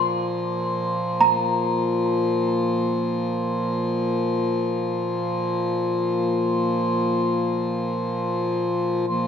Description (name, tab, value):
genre	world meditative, free-time meditation music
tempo	free time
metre	none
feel	none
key	unclear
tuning	A4 = 439 Hz
part	small celesta	melody	0.0-4.5 s	Bb5 to C6	-22 LUFS	right 1 dB	diffuse ambient delay
part	hand-pumped harmonium	drone	0.0-9.3 s	Bb2 to F3	-22 LUFS	left 1 dB	none
room	wet scoring stage reverb, RT60 1.9 s, small room ambience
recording	none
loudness	-21 LUFS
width	side -8 dB against mid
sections	0.0-9.1 A section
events	none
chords	none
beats	free time